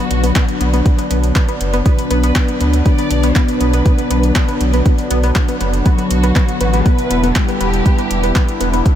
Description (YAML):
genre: melodic techno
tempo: 120 BPM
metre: 4/4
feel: straight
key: B minor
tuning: A4 = 440 Hz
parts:
  - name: soft octave-layered synth lead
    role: melody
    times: 0.0-8.8 s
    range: F#3 to D4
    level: -22 LUFS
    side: left 2 dB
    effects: chorus, phaser, diffuse ambient delay
  - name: warm studio violin section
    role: second line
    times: 0.0-8.8 s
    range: F#4 to D5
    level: -26 LUFS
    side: equal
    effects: vintage 12-bit sampler grit, sidechain pumping, ping-pong delay
  - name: warm analog pad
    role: sustained chords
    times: 0.0-9.0 s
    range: F#3 to E4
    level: -21 LUFS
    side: left 1 dB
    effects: wide subtle chorus, sidechain pumping
  - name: tight sequenced synth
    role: arpeggios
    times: 0.0-8.8 s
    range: B3 to B4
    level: -22 LUFS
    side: equal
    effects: chorus, sidechain pumping, ping-pong delay
  - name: analog drone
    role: drone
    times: 0.0-9.0 s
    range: D3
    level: -29 LUFS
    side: right 1 dB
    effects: none
  - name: round analog bass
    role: bass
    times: 0.1-8.8 s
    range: E1 to D2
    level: -16 LUFS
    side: equal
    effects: tube saturation, sidechain pumping
  - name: deep house drum kit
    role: drums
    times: 0.1-9.0 s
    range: handclaps, hi-hat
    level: -24 LUFS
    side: equal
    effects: small room ambience
  - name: electronic kick drum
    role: drums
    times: 0.4-9.0 s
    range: none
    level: -13 LUFS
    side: equal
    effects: small room ambience
room: light reverb, digital ambience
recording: none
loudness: -12 LUFS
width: side -10 dB against mid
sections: 0.0-9.0 A section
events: none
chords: 0.0 Bm; 6.9 Em